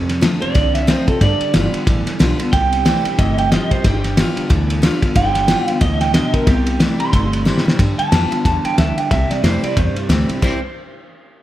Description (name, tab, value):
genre	rockabilly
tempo	182 BPM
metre	4/4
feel	swing 60% on 8ths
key	C major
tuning	A4 = 441 Hz
part	picked steel-string acoustic guitar	accompaniment	0.0-10.6 s	F2 to F4	-23 LUFS	left 3 dB	none
part	electric guitar through a small old amp	riff	0.0-10.6 s	F2 to E4	-23 LUFS	right 3 dB	none
part	upright bass	bass	0.0-10.6 s	G1 to G2	-20 LUFS	equal	none
part	cloth-damped thuddy drum kit	drums	0.1-10.5 s	crash cymbal, kick drum, ride cymbal, snare drum	-18 LUFS	equal	none
part	electric guitar through a small old amp	melody	0.4-10.6 s	G4 to C6	-21 LUFS	right 3 dB	spring reverb, tape echo
room	light reverb, small room ambience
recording	none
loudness	-14 LUFS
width	side -14 dB against mid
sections	0.0-7.8 A section; 7.8-10.4 B section; 10.4-11.4 C section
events	drum fill 7.5-7.8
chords	0.0 F; 1.2 G7; 2.5 C; 3.8 G7; 6.5 C; 7.8 G7; 9.1 C